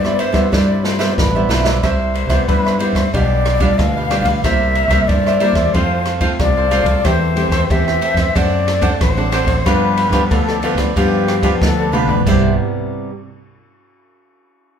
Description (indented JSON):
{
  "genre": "samba and choro",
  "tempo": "92 BPM",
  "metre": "4/4",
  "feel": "straight",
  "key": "C major",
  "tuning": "A4 = 440 Hz",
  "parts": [
    { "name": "breathy concert flute", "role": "second line", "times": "0.0-12.6 s", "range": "G4 to F5", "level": "-19 LUFS", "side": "left 3 dB", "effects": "none" },
    { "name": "cavaquinho", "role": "accompaniment", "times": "0.0-12.5 s", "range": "D4 to G5", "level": "-22 LUFS", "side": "right 4 dB", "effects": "none" },
    { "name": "nylon-string guitar", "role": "accompaniment", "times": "0.0-13.1 s", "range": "G2 to A4", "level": "-20 LUFS", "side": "left 1 dB", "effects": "none" },
    { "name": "fingered electric bass", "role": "bass", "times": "0.0-12.6 s", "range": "A1 to G2", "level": "-20 LUFS", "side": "equal", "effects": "none" },
    { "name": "open jazz drum kit", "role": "drums", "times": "0.0-12.4 s", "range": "crash cymbal, kick drum, ride cymbal, rim click, snare drum, toms", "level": "-19 LUFS", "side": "right 1 dB", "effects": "none" }
  ],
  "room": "wet large studio reverb, RT60 0.9 s",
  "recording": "band playing live in one room",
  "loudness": "-13 LUFS",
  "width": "side -8 dB against mid",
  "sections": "0.0-1.8 A section; 1.8-12.3 B section; 12.3-14.8 C section",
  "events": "drum fill 0.5-1.8, 11.6-12.3",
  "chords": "0.0 Cmaj7; 3.1 G7/B; 4.4 C7; 5.7 F; 7.0 Am7/E; 8.4 D7/F#; 9.7 G7; 12.3 Cmaj7"
}